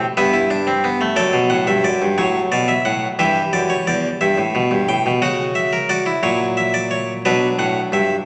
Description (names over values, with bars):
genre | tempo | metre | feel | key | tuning
classical, baroque-style 4-part fugue for harpsichord | 59 BPM (dotted quarters) | 12/8 | straight | E minor | A4 = 440 Hz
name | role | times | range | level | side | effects
harpsichord | solo | 0.0-8.2 s | E2 to G5 | -18 LUFS | equal | none
room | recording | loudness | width
wet recital hall reverb, RT60 1.6 s | none | -18 LUFS | mono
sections
0.0-8.3 A section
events
none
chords
0.0 Em; 1.2 Bm/F#; 3.2 Em; 5.2 F#7/C#; 7.2 Bm